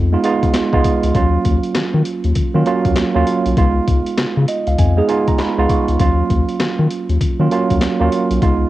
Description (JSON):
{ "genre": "R&B, new jack swing", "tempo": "99 BPM", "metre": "4/4", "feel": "swing 62% on 16ths", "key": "Eb minor", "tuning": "A4 = 440 Hz", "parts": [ { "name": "tine electric piano", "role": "accompaniment", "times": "0.0-8.7 s", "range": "Gb3 to Db6", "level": "-17 LUFS", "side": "right 4 dB", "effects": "medium stereo tremolo, cassette tape" }, { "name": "round analog bass", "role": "bass", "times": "0.0-8.7 s", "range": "Cb2 to Eb3", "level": "-17 LUFS", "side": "left 2 dB", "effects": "none" }, { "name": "boom bap sampler-style drum kit", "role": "drums", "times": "0.2-8.6 s", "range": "handclaps, hi-hat, kick drum, snare drum", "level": "-19 LUFS", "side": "left 2 dB", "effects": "none" } ], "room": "light reverb, digital ambience", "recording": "home recording on cassette", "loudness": "-14 LUFS", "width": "side -15 dB against mid", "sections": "0.0-8.7 A section", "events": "tine electric piano fill 4.2-6.0", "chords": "0.0 Db9; 1.1 Ebm7; 3.6 Db9; 6.0 Ebm7" }